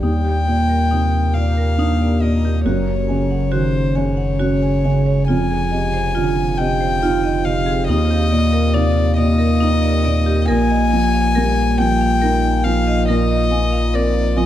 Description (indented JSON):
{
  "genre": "neoclassical piano and strings",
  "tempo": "46 BPM (dotted quarters)",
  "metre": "6/8",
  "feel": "rubato",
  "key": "Eb major",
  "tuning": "A4 = 440 Hz",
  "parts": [
    { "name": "warm violin", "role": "melody", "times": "0.0-14.5 s", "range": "C5 to Ab5", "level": "-22 LUFS", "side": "left 3 dB", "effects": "tape echo" },
    { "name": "felt-muted upright piano", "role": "accompaniment", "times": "0.0-14.5 s", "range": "Eb2 to Eb4", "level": "-19 LUFS", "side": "equal", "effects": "none" },
    { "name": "deep dark ambient pad", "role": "sustained chords", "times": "0.0-14.5 s", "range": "Bb3 to F5", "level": "-27 LUFS", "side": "right 1 dB", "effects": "chorus, built-in reverb" },
    { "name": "marimba with hard mallets", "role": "arpeggios", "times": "0.0-14.5 s", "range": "Eb4 to Ab5", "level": "-26 LUFS", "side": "right 5 dB", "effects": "tape echo" },
    { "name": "warm sub bass", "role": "bass", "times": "0.0-14.5 s", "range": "F1 to Eb2", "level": "-19 LUFS", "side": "equal", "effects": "none" }
  ],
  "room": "light reverb",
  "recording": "dark, warm production",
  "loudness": "-15 LUFS",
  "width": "side -12 dB against mid",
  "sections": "0.0-14.5 A section",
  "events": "none",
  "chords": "0.0 Ebmaj7; 2.7 Gbsus2; 5.3 Fm7; 7.9 Ebmaj7; 10.5 Bb7sus4"
}